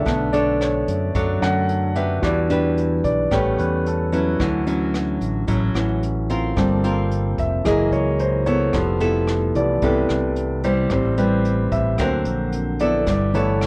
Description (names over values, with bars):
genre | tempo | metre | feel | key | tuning
bossa nova | 111 BPM | 4/4 | straight | D major | A4 = 440 Hz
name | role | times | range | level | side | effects
nylon-string guitar | accompaniment | 0.0-13.7 s | A2 to C#5 | -25 LUFS | equal | none
warm concert grand piano | accompaniment | 0.0-13.7 s | D3 to F#5 | -25 LUFS | equal | none
modern bright fingered electric bass | bass | 0.0-13.7 s | F1 to F#2 | -26 LUFS | equal | tube saturation
jazz brush drum kit | drums | 0.1-13.7 s | hi-hat, kick drum, rim click | -32 LUFS | equal | none
room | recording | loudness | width
light reverb | worn, warbling old tape, cassette tape, warbly pitch drift | -20 LUFS | mono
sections
0.0-13.7 A section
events
grand piano solo 0.0-13.7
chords
0.1 Bm9; 2.2 Em7; 3.3 A9; 4.4 Dmaj9; 6.6 Gm11; 7.7 F#9; 8.7 Fmaj9#11; 10.9 Am7; 12.0 D7b13; 13.1 G69